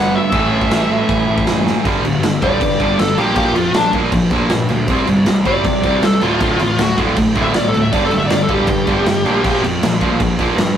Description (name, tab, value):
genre	punk rock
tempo	158 BPM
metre	4/4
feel	straight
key	unclear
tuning	A4 = 440 Hz
part	bluesy overdriven lead guitar	melody	0.0-9.6 s	D4 to F#5	-18 LUFS	left 1 dB	distortion
part	cranked stack guitar	riff	0.0-10.8 s	D2 to C4	-21 LUFS	left 6 dB	overdrive
part	distorted electric guitar	riff	0.0-10.8 s	D2 to C4	-19 LUFS	right 5 dB	overdrive
part	fuzz picked electric bass	bass	0.0-10.8 s	D1 to C3	-21 LUFS	right 1 dB	overdrive
part	raw garage drum kit	drums	0.3-10.7 s	crash cymbal, kick drum, snare drum	-19 LUFS	equal	none
room	light reverb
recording	rough rehearsal-room recording, tube saturation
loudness	-13 LUFS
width	side -9 dB against mid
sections	0.0-1.8 A section; 1.8-10.8 B section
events	drum fill 1.7; lead electric guitar solo 1.8-10.8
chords	0.3 A5; 1.8 G5; 3.2 Bb5; 4.9 C5; 6.2 D5; 7.9 G5; 9.3 Bb5